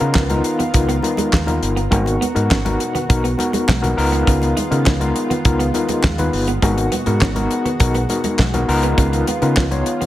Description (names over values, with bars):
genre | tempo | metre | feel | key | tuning
early-eighties boogie funk | 102 BPM | 4/4 | straight | unclear | A4 = 440 Hz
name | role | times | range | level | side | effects
overdriven tine electric piano | accompaniment | 0.0-10.0 s | B3 to C#5 | -20 LUFS | left 2 dB | medium tremolo
lush unison pad | sustained chords | 0.0-10.1 s | B2 to A#4 | -25 LUFS | equal | chorus
fingered electric bass | bass | 0.0-9.8 s | G1 to C#3 | -20 LUFS | equal | none
damped 70s drum kit | drums | 0.0-10.1 s | handclaps, hi-hat, kick drum, snare drum | -20 LUFS | equal | none
semi-hollow electric guitar | riff | 0.1-10.1 s | G#3 to D#4 | -26 LUFS | right 4 dB | wide subtle chorus
congas | percussion | 0.3-10.1 s | none | -29 LUFS | left 1 dB | none
room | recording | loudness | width
small room reverb | none | -15 LUFS | side -14 dB against mid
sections
0.0-10.1 A section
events
none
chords
0.0 C#13; 1.9 G#m9; 4.0 C#13; 6.6 G#m9; 8.7 C#13